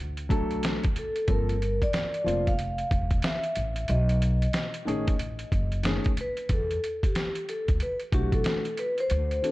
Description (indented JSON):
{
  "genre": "hip hop, jazz-hop",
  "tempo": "92 BPM",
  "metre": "4/4",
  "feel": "swing 63% on 16ths",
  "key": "E minor from 6.5 s",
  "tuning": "A4 = 440 Hz",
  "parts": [
    { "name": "upright bass", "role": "bass", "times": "0.0-9.4 s", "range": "E1 to E2", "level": "-28 LUFS", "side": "equal", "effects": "none" },
    { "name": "trip hop sampler-style drum kit", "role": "drums", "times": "0.2-9.5 s", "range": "hi-hat, kick drum, snare drum", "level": "-28 LUFS", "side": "equal", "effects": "none" },
    { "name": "dark grand piano", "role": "accompaniment", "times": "0.3-9.5 s", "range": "D#3 to A4", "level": "-31 LUFS", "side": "left 1 dB", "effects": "none" },
    { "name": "vibraphone with soft mallets", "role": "melody", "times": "1.0-9.5 s", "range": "G4 to F5", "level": "-30 LUFS", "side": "equal", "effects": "none" }
  ],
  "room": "light reverb, small room ambience",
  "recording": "dark, warm production",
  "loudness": "-25 LUFS",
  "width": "side -18 dB against mid",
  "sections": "0.0-6.5 A section; 6.5-9.5 B section",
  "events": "none",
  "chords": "0.0 E9sus4 (rootless); 1.3 Gm11; 3.9 B13; 6.5 E9sus4"
}